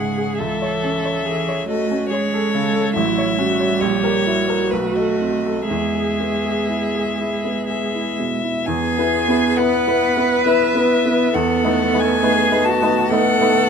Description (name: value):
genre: classical, slow romantic movement for piano quartet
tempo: 59-71 BPM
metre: 3/4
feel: rubato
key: E major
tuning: A4 = 441 Hz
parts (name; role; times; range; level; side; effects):
- rich violin; melody; 0.0-13.7 s; B4 to A5; -22 LUFS; left 6 dB; none
- rich cello; second line; 0.0-13.7 s; C#3 to B4; -23 LUFS; right 4 dB; none
- bright baby grand piano; accompaniment; 0.0-13.7 s; A1 to E5; -20 LUFS; equal; none
- warm viola; accompaniment; 0.0-13.7 s; B3 to A4; -24 LUFS; right 2 dB; none
room: light reverb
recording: close, detailed microphones, lossy compression artefacts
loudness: -16 LUFS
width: side -6 dB against mid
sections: 0.0-8.7 A section; 8.7-13.7 B section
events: none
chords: 0.4 A/C#; 3.0 F#m7/A; 3.8 A#dim7; 4.7 B7b9; 5.7 E; 11.3 B7/E